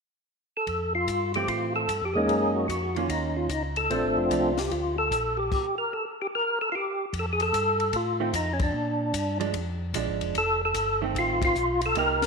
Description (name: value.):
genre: soul jazz organ trio.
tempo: 149 BPM.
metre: 4/4.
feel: swing 66% on 8ths.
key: F major.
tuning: A4 = 440 Hz.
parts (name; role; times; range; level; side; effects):
percussive tonewheel organ; melody; 0.6-12.3 s; F3 to Bb4; -25 LUFS; equal; slow rotary speaker, chorus vibrato.
mellow tonewheel organ; bass; 0.7-12.3 s; F1 to Bb2; -32 LUFS; equal; slow rotary speaker.
compact cocktail drum kit; drums; 0.7-12.3 s; crash cymbal, hi-hat, kick drum, ride cymbal, snare drum; -35 LUFS; left 3 dB; none.
vintage hollow-body jazz guitar; accompaniment; 1.4-4.6, 8.2-12.2 s; Eb3 to G4; -32 LUFS; right 10 dB; none.
room: wet echo chamber reverb, RT60 1.4 s, studio ambience.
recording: 1960s-style stereo.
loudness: -24 LUFS.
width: side -4 dB against mid.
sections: 0.7-7.1 A section; 7.1-12.3 B section.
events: stop 5.5-7.1; band accent 8.5, 11.4.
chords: 0.0 N.C.; 0.7 Fmaj7; 2.3 Gb6; 3.9 Bbmaj7; 5.5 N.C.; 7.1 F7; 8.7 Bb7; 10.4 F7.